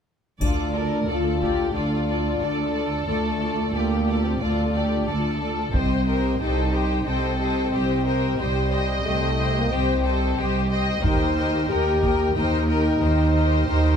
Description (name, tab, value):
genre	cinematic, epic orchestral film score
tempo	90 BPM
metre	4/4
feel	straight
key	unclear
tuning	A4 = 440 Hz
part	warm symphonic violin section	melody	0.4-14.0 s	F4 to Eb5	-30 LUFS	left 3 dB	none
part	rich studio violin section	second line	0.4-14.0 s	D5 to G5	-31 LUFS	left 2 dB	none
part	warm symphonic viola section	accompaniment	0.4-14.0 s	F4 to C5	-30 LUFS	left 2 dB	none
part	mellow French horn section	sustained chords	0.4-14.0 s	G3 to G4	-25 LUFS	left 2 dB	none
part	dark symphonic double bass section	bass	0.4-14.0 s	C2 to Eb2	-26 LUFS	right 2 dB	none
part	rich symphonic cello section	bass	0.4-14.0 s	C2 to Eb2	-27 LUFS	right 2 dB	none
part	taiko ensemble	drums	0.4-1.7, 5.7-7.0, 11.0-12.3 s	none	-26 LUFS	equal	none
part	triangle	percussion	0.4-1.7 s	none	-40 LUFS	left 3 dB	none
room	light reverb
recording	none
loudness	-20 LUFS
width	side -7 dB against mid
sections	0.4-14.0 A section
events	none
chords	0.4 Dm; 5.7 Cm; 11.0 Eb